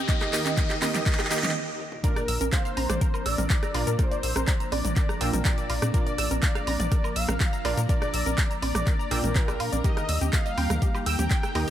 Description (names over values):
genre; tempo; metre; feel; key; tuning
progressive house; 123 BPM; 4/4; straight; Bb major; A4 = 441 Hz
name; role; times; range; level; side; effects
wide unison lead; melody; 0.0-11.7 s; Bb4 to G5; -33 LUFS; left 1 dB; sidechain pumping, digital delay
evolving wavetable pad; sustained chords; 0.0-11.7 s; Eb2 to Bb4; -38 LUFS; left 2 dB; phaser, built-in reverb, sidechain pumping
tight sequenced synth; arpeggios; 0.0-11.7 s; G4 to E6; -34 LUFS; right 1 dB; chorus, phaser, cassette tape, sidechain pumping, digital delay
wide unison pluck; stabs; 0.0-11.7 s; Bb2 to G5; -33 LUFS; right 3 dB; sidechain pumping, digital delay
riser; sound effects; 0.0-1.6 s; none; -34 LUFS; left 1 dB; none
drifting glass-harmonics texture; texture; 0.0-11.7 s; Bb5 to D6; -44 LUFS; left 4 dB; none
deep house drum kit; drums; 0.1-11.7 s; cabasa, handclaps, hi-hat, toms, woodblock; -31 LUFS; left 1 dB; high-pass filter on snare, sidechain pumping on hats, high-pass filter on hats, sidechain pumping on perc, high-pass filter on perc, sidechain pumping on toms, high-pass filter on toms, high-pass filter on room
electronic kick drum; drums; 0.1-11.4 s; none; -25 LUFS; equal; none
punchy analog drum machine; percussion; 0.2-11.5 s; congas, rim click, toms; -33 LUFS; right 4 dB; sidechain pumping on snare, sidechain pumping on toms, sidechain pumping on perc
tight sequencer bass; bass; 2.3-11.7 s; Bb1 to Bb2; -28 LUFS; equal; sidechain pumping
room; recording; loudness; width
digital ambience; none; -23 LUFS; side -11 dB against mid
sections
0.0-2.0 A section; 2.0-11.7 B section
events
build-up 0.0-2.0; drum fill 0.0-1.6, 1.8; riser 0.0-1.6; filter sweep on synth pluck 0.0-2.0; stop 1.6-2.0; drop 2.0-11.7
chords
0.0 Eb; 2.0 Bb; 9.8 Eb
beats
| 0.09 0.57 1.06 1.55 | 2.04 2.53 3.01 3.50 | 3.99 4.48 4.96 5.45 | 5.94 6.43 6.92 7.40 | 7.89 8.38 8.87 9.36 | 9.84 10.33 10.82 11.31